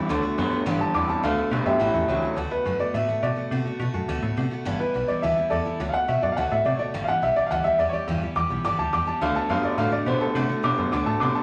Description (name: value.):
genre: rockabilly.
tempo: 210 BPM.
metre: 4/4.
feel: straight.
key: D major.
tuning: A4 = 440 Hz.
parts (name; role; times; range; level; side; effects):
warm upright piano; melody; 0.0-11.4 s; G4 to D6; -26 LUFS; equal; none.
picked steel-string acoustic guitar; accompaniment; 0.0-11.4 s; G2 to G4; -33 LUFS; equal; none.
electric guitar through a small old amp; riff; 0.0-2.3, 9.2-11.4 s; G2 to B3; -28 LUFS; equal; none.
metallic FM bass; bass; 0.1-11.4 s; G1 to C3; -32 LUFS; equal; none.
room: wet large studio reverb, RT60 1.4 s.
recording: none.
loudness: -24 LUFS.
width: mono.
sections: 0.0-2.4 A section; 2.4-11.4 B section.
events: upright piano solo 0.0-2.4.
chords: 0.1 D6; 0.7 G6; 1.2 D6; 1.8 A6; 2.4 D6; 4.7 G6; 5.8 D6; 6.9 G6; 9.2 D6.